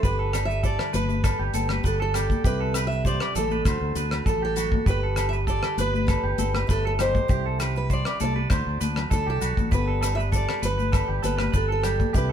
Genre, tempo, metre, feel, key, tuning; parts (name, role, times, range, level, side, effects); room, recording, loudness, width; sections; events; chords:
highlife guitar band; 99 BPM; 4/4; straight; G major; A4 = 440 Hz
picked steel-string acoustic guitar; melody; 0.0-12.3 s; A4 to E5; -29 LUFS; right 1 dB
picked acoustic archtop guitar; accompaniment; 0.0-12.3 s; G2 to A4; -35 LUFS; equal
clean electric guitar; arpeggios; 0.0-12.3 s; F#4 to D5; -30 LUFS; right 3 dB; spring reverb
fingered electric bass; bass; 0.0-12.3 s; G1 to D2; -27 LUFS; equal
damped 70s drum kit; drums; 0.0-12.3 s; hi-hat, kick drum, rim click; -26 LUFS; equal
maracas; percussion; 0.0-12.3 s; -40 LUFS; left 7 dB
agogo bells; percussion; 0.3-12.0 s; -39 LUFS; left 5 dB
congas; percussion; 0.9-12.1 s; -33 LUFS; left 4 dB
moderate studio reverb, RT60 0.9 s; band playing live in one room; -22 LUFS; side -9 dB against mid
0.0-12.3 A section
0.0 G; 2.5 Csus2; 3.7 D; 4.9 G; 7.3 Csus2; 8.5 D; 9.7 G